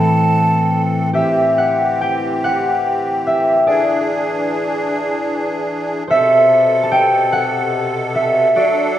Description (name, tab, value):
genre	celtic folk, Celtic slow air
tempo	48 BPM (dotted quarters)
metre	6/8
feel	uneven beats, rubato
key	A dorian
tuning	A4 = 440 Hz
part	mellow wooden flute	melody	0.0-0.8 s	A5	-18 LUFS	right 3 dB	none
part	concert harp	accompaniment	0.0-9.0 s	A2 to A5	-14 LUFS	equal	none
part	musette accordion	sustained chords	0.0-9.0 s	B2 to A4	-19 LUFS	equal	none
room	wet recital hall reverb, RT60 1.6 s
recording	minimal, uncompressed stereo recording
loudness	-13 LUFS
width	side -11 dB against mid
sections	0.0-1.1 A section; 1.1-9.0 B section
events	harp solo 1.1-9.0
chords	0.0 Am; 1.1 C; 3.7 E7; 6.1 Amadd9